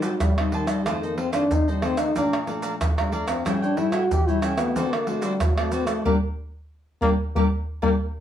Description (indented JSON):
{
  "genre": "samba and choro",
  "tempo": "92 BPM",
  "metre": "4/4",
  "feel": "straight",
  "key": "G minor",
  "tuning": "A4 = 435 Hz",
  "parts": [
    { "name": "breathy trombone", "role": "second line", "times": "0.0-7.9 s", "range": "C3 to G4", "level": "-25 LUFS", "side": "left 2 dB", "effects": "none" },
    { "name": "cavaquinho", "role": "accompaniment", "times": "0.0-7.9 s", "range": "E4 to Bb5", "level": "-32 LUFS", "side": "right 3 dB", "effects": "none" },
    { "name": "nylon-string guitar", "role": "accompaniment", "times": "0.0-7.9 s", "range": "F2 to F#4", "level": "-28 LUFS", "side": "left 3 dB", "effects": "none" },
    { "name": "maracas, pandeiro, surdo and tamborim", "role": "percussion", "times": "0.0-8.0 s", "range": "none", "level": "-25 LUFS", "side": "right 1 dB", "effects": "none" }
  ],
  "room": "wet studio reverb, RT60 0.6 s",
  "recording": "band playing live in one room",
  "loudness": "-21 LUFS",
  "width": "side -10 dB against mid",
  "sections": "0.0-8.2 A section",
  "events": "trombone solo 0.0-8.2; band accent 6.1-8.2",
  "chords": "0.0 Am7b5; 0.9 F7; 2.2 Bbmaj7; 3.5 A7; 4.8 D7; 6.1 Gm"
}